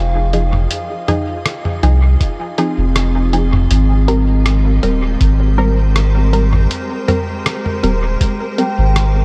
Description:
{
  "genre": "ambient dub",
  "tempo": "80 BPM",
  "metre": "4/4",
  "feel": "straight",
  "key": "unclear",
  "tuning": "A4 = 436 Hz",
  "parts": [
    { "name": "soft additive organ-like pad", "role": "sustained chords", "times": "0.0-9.2 s", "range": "F3 to Eb5", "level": "-28 LUFS", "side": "equal", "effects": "ensemble chorus, built-in reverb" },
    { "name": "vibraphone with soft mallets", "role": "arpeggios", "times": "0.0-9.2 s", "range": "C4 to G5", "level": "-26 LUFS", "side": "equal", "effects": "delay" },
    { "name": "soft dub sub bass", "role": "bass", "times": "0.0-9.2 s", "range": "Eb1 to C2", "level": "-16 LUFS", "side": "equal", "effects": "none" },
    { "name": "filtered dub chord stab", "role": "stabs", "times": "0.3-8.8 s", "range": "F3 to Bb4", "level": "-24 LUFS", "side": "equal", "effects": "chorus, dub echo" },
    { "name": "lo-fi sampler-style drum kit", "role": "drums", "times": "0.3-9.1 s", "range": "hi-hat, rim click, toms", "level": "-24 LUFS", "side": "equal", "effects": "dub echo" },
    { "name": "electronic kick drum", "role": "drums", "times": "2.2-8.4 s", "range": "none", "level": "-18 LUFS", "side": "equal", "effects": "none" }
  ],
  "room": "light reverb",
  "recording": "none",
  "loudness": "-15 LUFS",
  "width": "mono",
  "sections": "0.0-9.2 A section",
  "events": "fade-in on ambient pad 0.0-9.2",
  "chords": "0.0 Fm7; 3.7 Abmaj9",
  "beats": "| 0.71 1.46 2.21 2.96 | 3.71 4.46 5.21 5.96 | 6.71 7.46 8.21 8.96"
}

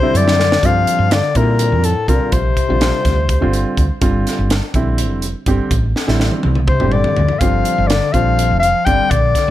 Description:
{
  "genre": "electric jazz fusion",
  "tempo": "248 BPM (eighths)",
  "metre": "7/8",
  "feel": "straight",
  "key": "G dorian",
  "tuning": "A4 = 440 Hz",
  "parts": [
    { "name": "breathy soprano saxophone", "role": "melody", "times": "0.0-3.8, 6.7-9.5 s", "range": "A4 to G5", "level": "-17 LUFS", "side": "left 3 dB", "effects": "plate reverb" },
    { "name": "mellow bass clarinet", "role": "second line", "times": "0.0-3.8, 6.7-9.5 s", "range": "A2 to G3", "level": "-23 LUFS", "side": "left 8 dB", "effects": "none" },
    { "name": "warm baby grand piano", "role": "accompaniment", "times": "0.0-9.5 s", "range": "D3 to G4", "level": "-21 LUFS", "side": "right 2 dB", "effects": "plate reverb" },
    { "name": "woody fretless electric bass", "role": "bass", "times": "0.1-9.5 s", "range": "F1 to Bb2", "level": "-17 LUFS", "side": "equal", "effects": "lush chorus" },
    { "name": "crisp fusion drum kit", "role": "drums", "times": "0.1-9.5 s", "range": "hi-hat, kick drum, snare drum, toms", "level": "-19 LUFS", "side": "equal", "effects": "none" }
  ],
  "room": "moderate studio reverb, RT60 0.6 s",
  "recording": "none",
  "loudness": "-13 LUFS",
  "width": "side -14 dB against mid",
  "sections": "0.6-9.5 A section",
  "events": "drum fill 0.3-0.6, 6.0-7.4",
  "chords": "0.0 D9sus4; 0.6 Gm7; 2.3 Bb69; 4.0 Gm7; 5.7 Am7; 7.4 Gm7",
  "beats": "0.14 0.38 | 0.62 0.86 1.11 1.35 1.59 1.83 2.08 | 2.32 2.56 2.80 3.05 3.29 3.53 3.77 | 4.01 4.26 4.50 4.74 4.99 5.23 5.47 | 5.71 5.96 6.20 6.44 6.68 6.92 7.17 | 7.41 7.65 7.89 8.14 8.38 8.62 8.86 | 9.11 9.35"
}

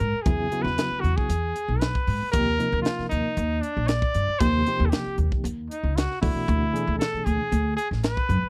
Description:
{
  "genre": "electric jazz fusion",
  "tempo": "116 BPM",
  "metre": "4/4",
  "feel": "straight",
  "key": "unclear",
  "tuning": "A4 = 441 Hz",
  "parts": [
    { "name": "clear trumpet", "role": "melody", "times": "0.0-8.5 s", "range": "D4 to D5", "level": "-30 LUFS", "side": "equal", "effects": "none" },
    { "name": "upright bass", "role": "bass", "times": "0.0-8.5 s", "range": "A1 to G#2", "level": "-28 LUFS", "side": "equal", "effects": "none" },
    { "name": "tight funk drum kit", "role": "drums", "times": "0.0-8.4 s", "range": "hi-hat, kick drum, snare drum", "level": "-30 LUFS", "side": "equal", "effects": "none" },
    { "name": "overdriven reed electric piano", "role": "accompaniment", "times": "0.3-7.5 s", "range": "B2 to Bb4", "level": "-32 LUFS", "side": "equal", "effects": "fast tremolo" }
  ],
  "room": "light reverb",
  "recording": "dry, close 1970s-style studio recording",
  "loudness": "-25 LUFS",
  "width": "mono",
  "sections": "0.0-8.5 A section",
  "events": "none",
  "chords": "0.0 Eadd9; 2.3 Ebmaj9; 6.2 Dadd9",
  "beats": "| 0.26 0.78 1.30 1.82 | 2.33 2.85 3.37 3.89 | 4.41 4.93 5.45 5.96 | 6.48 7.00 7.52 8.04"
}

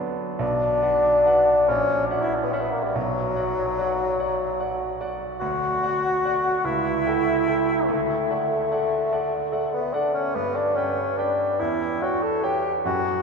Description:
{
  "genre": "classical, romantic duo for bassoon and grand piano",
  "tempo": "48 BPM (dotted quarters)",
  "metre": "6/8",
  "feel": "rubato",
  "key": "B minor",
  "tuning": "A4 = 440 Hz",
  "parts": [
    { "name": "clear grand piano", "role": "accompaniment", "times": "0.0-13.2 s", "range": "A#1 to G5", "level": "-27 LUFS", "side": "right 2 dB", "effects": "none" },
    { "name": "warm bassoon", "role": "melody", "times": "0.4-13.2 s", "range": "F#3 to A4", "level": "-22 LUFS", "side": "left 1 dB", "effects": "none" }
  ],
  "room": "wet cathedral reverb, RT60 5.0 s",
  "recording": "minimal, uncompressed stereo recording",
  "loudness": "-21 LUFS",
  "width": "side -5 dB against mid",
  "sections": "0.4-13.2 A section",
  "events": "none",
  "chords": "0.4 Bm; 1.7 F#7/A#; 3.0 Bm; 5.4 D; 6.7 A7/C#; 7.9 D; 10.3 G; 11.6 C#dim/E",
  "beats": "| 0.41 1.69 | 2.95 4.18 | 5.41 6.65 | 7.89 9.11 | 10.34 11.59 | 12.84"
}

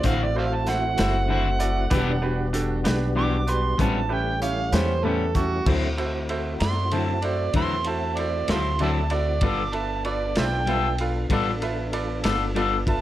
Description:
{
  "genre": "slow blues",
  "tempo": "64 BPM (dotted quarters)",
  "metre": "12/8",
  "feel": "straight",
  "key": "D mixolydian",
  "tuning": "A4 = 443 Hz",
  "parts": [
    { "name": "overdriven harmonica", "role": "second line", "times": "0.0-13.0 s", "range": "F#4 to D6", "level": "-27 LUFS", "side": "right 4 dB", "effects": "slapback echo" },
    { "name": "bright grand piano", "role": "accompaniment", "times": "0.0-13.0 s", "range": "C#4 to F5", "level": "-30 LUFS", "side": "right 3 dB", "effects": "none" },
    { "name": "electric guitar at the edge of break-up", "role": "accompaniment", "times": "0.0-12.8 s", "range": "A2 to A4", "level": "-27 LUFS", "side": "left 6 dB", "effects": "harmonic tremolo" },
    { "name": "tonewheel organ", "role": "sustained chords", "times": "0.0-13.0 s", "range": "E3 to A4", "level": "-31 LUFS", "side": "left 1 dB", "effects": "chorus vibrato, fast rotary speaker" },
    { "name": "upright bass", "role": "bass", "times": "0.0-13.0 s", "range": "E1 to F#2", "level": "-27 LUFS", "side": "equal", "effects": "none" },
    { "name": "crunchy breakbeat drum kit", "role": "drums", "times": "0.0-13.0 s", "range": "crash cymbal, hi-hat, kick drum, ride cymbal, snare drum", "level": "-29 LUFS", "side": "equal", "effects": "none" }
  ],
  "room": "little or no reverb",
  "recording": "none",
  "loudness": "-21 LUFS",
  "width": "side -14 dB against mid",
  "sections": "0.0-5.7 A section; 5.7-13.0 A section",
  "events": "harmonica solo 0.0-13.0",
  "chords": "0.0 D9; 1.9 Em7; 3.8 A9; 5.7 D9; 9.4 G9",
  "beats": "0.05 0.99 | 1.93 2.86 3.80 4.74 | 5.68 6.61 7.55 8.49 | 9.43 10.37 11.31 12.25"
}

